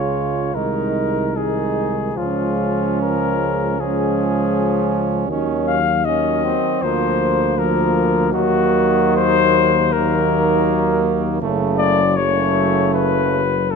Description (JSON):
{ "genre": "classical, hymn-like piece for brass band", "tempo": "78 BPM", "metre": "4/4", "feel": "uneven beats, rubato", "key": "unclear", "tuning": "A4 = 442 Hz", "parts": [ { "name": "mellow cornet", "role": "melody", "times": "0.0-13.8 s", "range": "F4 to F5", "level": "-20 LUFS", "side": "left 9 dB", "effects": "none" }, { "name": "mellow flugelhorn", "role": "second line", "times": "0.0-13.8 s", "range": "A3 to F4", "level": "-23 LUFS", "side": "right 9 dB", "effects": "none" }, { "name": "bright trombone", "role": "accompaniment", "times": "0.0-13.8 s", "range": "C#3 to F3", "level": "-24 LUFS", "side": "right 5 dB", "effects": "none" }, { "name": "dark trombone section", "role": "accompaniment", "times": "0.0-13.8 s", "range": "F3 to Ab3", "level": "-24 LUFS", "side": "left 4 dB", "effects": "none" }, { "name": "mellow tuba", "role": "bass", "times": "0.0-13.8 s", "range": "F#1 to Eb2", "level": "-23 LUFS", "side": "right 1 dB", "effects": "none" } ], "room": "moderate concert hall reverb, RT60 2.0 s", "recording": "close, detailed microphones", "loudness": "-16 LUFS", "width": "side -5 dB against mid", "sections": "0.0-13.8 A section", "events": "none", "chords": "0.0 Db; 0.6 Ab/C; 2.2 Db; 5.3 Ebm7; 6.8 Bb/D; 8.3 Ebm; 11.4 F#m" }